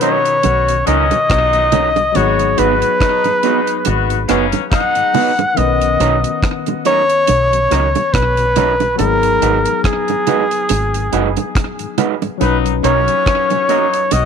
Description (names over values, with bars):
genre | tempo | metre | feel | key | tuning
lovers rock reggae | 70 BPM | 4/4 | swing 56% on 16ths | B major | A4 = 439 Hz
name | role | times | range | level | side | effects
clear flugelhorn | melody | 0.0-14.3 s | G#4 to F#5 | -15 LUFS | left 1 dB | tape echo
clear horn section | second line | 0.0-5.3, 12.4-14.3 s | A#2 to F#4 | -22 LUFS | left 14 dB | none
barky tine electric piano | accompaniment | 0.0-14.3 s | B2 to B4 | -23 LUFS | left 14 dB | overdrive, auto-pan, slapback echo
mellow tonewheel organ | accompaniment | 0.0-13.8 s | G#2 to F#4 | -28 LUFS | left 11 dB | none
electric guitar through a small old amp | stabs | 0.0-13.9 s | F#3 to B4 | -19 LUFS | right 13 dB | none
deep reggae drum kit | drums | 0.0-14.3 s | hi-hat, kick drum, rim click | -20 LUFS | right 1 dB | slapback echo
bongos | percussion | 0.4-14.3 s | none | -20 LUFS | right 14 dB | none
deep dub fingered electric bass | bass | 0.5-14.3 s | F#1 to C#2 | -18 LUFS | equal | none
room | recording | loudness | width
light reverb, small room ambience | 1960s-style stereo with parts hard left and right | -12 LUFS | side -7 dB against mid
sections
0.0-14.3 A section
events
none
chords
0.0 Bmaj9; 2.2 G#m7; 5.6 Bmaj9; 9.0 G#m7; 12.4 Bmaj9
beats
0.44 1.30 | 2.15 3.01 3.86 4.71 | 5.57 6.42 7.28 8.13 | 8.99 9.84 10.70 11.55 | 12.41 13.26 14.12